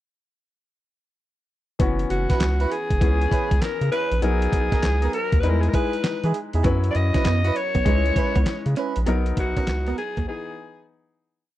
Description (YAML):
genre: R&B, new jack swing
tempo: 99 BPM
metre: 4/4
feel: swing 65% on 16ths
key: unclear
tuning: A4 = 440 Hz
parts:
  - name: clear concert grand piano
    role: accompaniment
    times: 1.8-11.5 s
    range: E3 to B4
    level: -29 LUFS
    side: left 4 dB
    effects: none
  - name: round analog bass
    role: bass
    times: 1.8-10.3 s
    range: F#1 to E3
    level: -22 LUFS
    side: equal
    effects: none
  - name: dusty soul sampler-style drum kit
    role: drums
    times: 1.8-10.3 s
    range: handclaps, hi-hat, kick drum, snare drum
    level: -23 LUFS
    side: equal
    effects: none
  - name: growling alto saxophone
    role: melody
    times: 2.1-10.8 s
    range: F#4 to D#5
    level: -26 LUFS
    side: left 1 dB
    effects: slapback echo
  - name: mellow horn section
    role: stabs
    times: 2.3-10.0 s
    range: B3 to B4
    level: -29 LUFS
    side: right 6 dB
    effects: none
  - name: direct-recorded clean electric guitar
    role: riff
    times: 6.6-10.3 s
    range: G#3 to C#4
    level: -30 LUFS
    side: right 5 dB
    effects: lush chorus
room: little or no reverb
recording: dry, close 1970s-style studio recording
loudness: -20 LUFS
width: side -14 dB against mid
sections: 1.8-11.5 verse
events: fade-out 9.1-11.5; break 10.3-11.5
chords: 1.8 F#7sus4; 3.0 C#m7; 4.2 Bmaj7; 5.4 Emaj7; 6.6 F#7sus4; 7.9 C#m7; 9.1 Bmaj7; 10.3 Emaj7